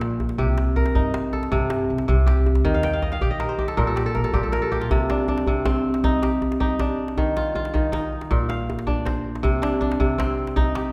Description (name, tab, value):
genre	west african traditional, West African string and xylophone music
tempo	106 BPM (dotted quarters)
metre	12/8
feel	straight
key	C dorian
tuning	A4 = 440 Hz
part	kora	arpeggios	0.0-10.9 s	Bb2 to G5	-25 LUFS	equal	none
part	upright bass	bass	0.0-4.8 s	Bb1 to G2	-26 LUFS	equal	none
part	djembe	percussion	0.0-10.9 s	none	-28 LUFS	equal	none
room	wet recital hall reverb, RT60 1.4 s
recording	none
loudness	-22 LUFS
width	mono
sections	0.0-4.9 A section; 4.9-10.9 B section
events	kora fill 2.7-4.9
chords	0.4 Cm; 2.6 Eb; 4.9 Cm; 7.2 Ebsus2; 8.3 Bb; 9.4 Cm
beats	| 0.39 0.95 1.52 2.08 | 2.65 3.21 3.78 4.34 | 4.91 5.47 6.04 6.61 | 7.17 7.74 8.30 8.87 | 9.44 10.01 10.57